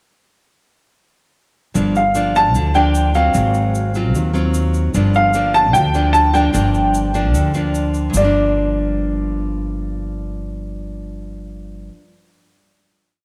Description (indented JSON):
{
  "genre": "bossa nova",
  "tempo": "150 BPM",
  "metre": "4/4",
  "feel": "straight",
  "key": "G minor",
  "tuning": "A4 = 440 Hz",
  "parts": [
    { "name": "nylon-string guitar", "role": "accompaniment", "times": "1.7-12.0 s", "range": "G2 to F4", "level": "-23 LUFS", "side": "equal", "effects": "none" },
    { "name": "upright bass", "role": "bass", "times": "1.8-11.9 s", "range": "G1 to Eb2", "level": "-22 LUFS", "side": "equal", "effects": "none" },
    { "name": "tube shaker", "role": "percussion", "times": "1.8-8.2 s", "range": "none", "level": "-34 LUFS", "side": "equal", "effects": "none" },
    { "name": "warm baby grand piano", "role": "melody", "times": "2.0-11.9 s", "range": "D5 to A5", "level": "-19 LUFS", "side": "equal", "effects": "tape echo" }
  ],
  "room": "moderate echo chamber reverb, RT60 2.5 s",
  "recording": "none",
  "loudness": "-17 LUFS",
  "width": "mono",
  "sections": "1.8-8.1 A section; 8.1-11.3 final chord",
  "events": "none",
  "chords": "1.8 Gm7; 3.4 Ab6; 4.9 Gm7"
}